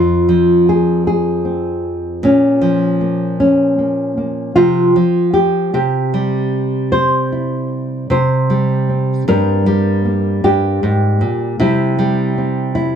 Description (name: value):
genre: folk, solo fingerstyle acoustic guitar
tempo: 52 BPM (dotted quarters)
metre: 6/8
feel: straight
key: unclear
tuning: A4 = 440 Hz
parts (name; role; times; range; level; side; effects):
- nylon-string guitar; solo; 0.0-13.0 s; F2 to C5; -13 LUFS; equal; none
room: moderate small room ambience, RT60 0.5 s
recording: none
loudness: -13 LUFS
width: side -8 dB against mid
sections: 0.0-13.0 A section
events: none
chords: 0.0 Fm; 2.2 Bbm; 4.6 Csus4; 5.7 C; 9.3 Gmadd11; 11.6 C